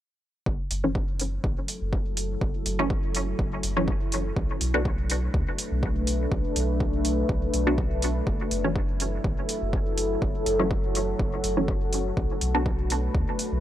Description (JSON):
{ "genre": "dub techno", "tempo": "123 BPM", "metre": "4/4", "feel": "swing 54% on 16ths", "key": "F# minor", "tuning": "A4 = 441 Hz", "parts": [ { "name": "deep dark ambient pad", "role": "sustained chords", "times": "1.6-13.6 s", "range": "F#3 to B4", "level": "-30 LUFS", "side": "left 1 dB", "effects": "chorus, built-in reverb, sidechain pumping" }, { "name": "soft dub sub bass", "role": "bass", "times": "0.5-13.6 s", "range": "F#1 to D2", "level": "-29 LUFS", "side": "equal", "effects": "sidechain pumping" }, { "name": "electronic kick drum", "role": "drums", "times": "0.5-13.3 s", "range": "none", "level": "-28 LUFS", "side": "equal", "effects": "none" }, { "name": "electronic hi-hat", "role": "drums", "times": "0.7-13.5 s", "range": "none", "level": "-31 LUFS", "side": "right 1 dB", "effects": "none" }, { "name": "filtered dub chord stab", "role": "stabs", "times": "0.8-12.6 s", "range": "E3 to F#4", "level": "-29 LUFS", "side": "equal", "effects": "phaser, sidechain pumping, dub echo" } ], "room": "digital ambience", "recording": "dry, gritty hardware recording, transformer saturation", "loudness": "-24 LUFS", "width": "side -12 dB against mid", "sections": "0.5-13.6 A section", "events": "none", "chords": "0.5 F#m7; 4.4 Bm7; 8.3 F#m7; 12.2 Bm7", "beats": "| 0.46 0.95 1.44 1.93 | 2.42 2.90 3.39 3.88 | 4.37 4.85 5.34 5.83 | 6.32 6.80 7.29 7.78 | 8.27 8.76 9.24 9.73 | 10.22 10.71 11.20 11.68 | 12.17 12.66 13.15" }